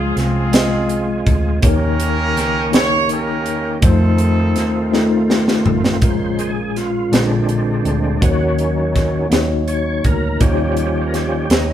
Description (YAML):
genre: slow gospel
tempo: 55 BPM (dotted quarters)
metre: 6/8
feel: straight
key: unclear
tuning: A4 = 441 Hz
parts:
  - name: clear horn section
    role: melody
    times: 0.0-5.3 s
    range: C4 to Db5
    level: -21 LUFS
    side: right 3 dB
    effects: none
  - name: tine electric piano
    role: accompaniment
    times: 0.0-11.7 s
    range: Bb2 to C6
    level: -19 LUFS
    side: left 2 dB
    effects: medium stereo tremolo
  - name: overdriven tonewheel organ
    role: sustained chords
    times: 0.0-11.7 s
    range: Db3 to Db5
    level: -23 LUFS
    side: right 2 dB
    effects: slow rotary speaker, chorus vibrato
  - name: hollow-body short-scale fingered electric bass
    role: bass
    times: 0.0-11.7 s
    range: A1 to F2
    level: -21 LUFS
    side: equal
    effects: none
  - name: crisp fusion drum kit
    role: drums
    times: 0.2-11.7 s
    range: hi-hat, kick drum, snare drum, toms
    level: -18 LUFS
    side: right 1 dB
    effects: none
  - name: mellow French horn section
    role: sustained chords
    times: 6.0-11.7 s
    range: Gb3 to F4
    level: -30 LUFS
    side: right 3 dB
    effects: none
room: moderate stone room reverb, RT60 1.0 s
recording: band playing live in one room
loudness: -14 LUFS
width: side -11 dB against mid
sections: 0.0-6.0 A section; 6.0-11.7 B section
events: drum fill 4.9-6.0; tonewheel organ solo 6.0-11.7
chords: 0.0 Dbmaj7; 1.6 Eb7; 3.8 F7; 6.0 Bbm7; 7.1 Bb7; 8.2 Ebm7; 10.4 Eb7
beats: 0.53 | 1.63 2.73 | 3.83 4.92 | 6.02 7.12 | 8.21 9.31 | 10.40 11.50